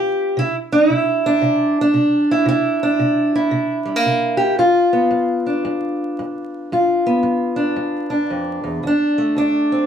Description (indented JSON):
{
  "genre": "acoustic country blues, solo or duo",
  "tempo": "114 BPM",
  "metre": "4/4",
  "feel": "swing 63% on 8ths",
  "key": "G mixolydian",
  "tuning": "A4 = 439 Hz",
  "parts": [
    { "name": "fingerpicked steel-string acoustic guitar", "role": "solo", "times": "0.0-9.9 s", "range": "D2 to G4", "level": "-16 LUFS", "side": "equal", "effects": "none" }
  ],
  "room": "wet studio reverb, RT60 0.6 s",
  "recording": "band playing live in one room, vinyl crackle",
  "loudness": "-15 LUFS",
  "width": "side -8 dB against mid",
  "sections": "0.0-9.9 A section",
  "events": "none",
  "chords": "0.4 C7; 4.6 G7; 8.8 D5"
}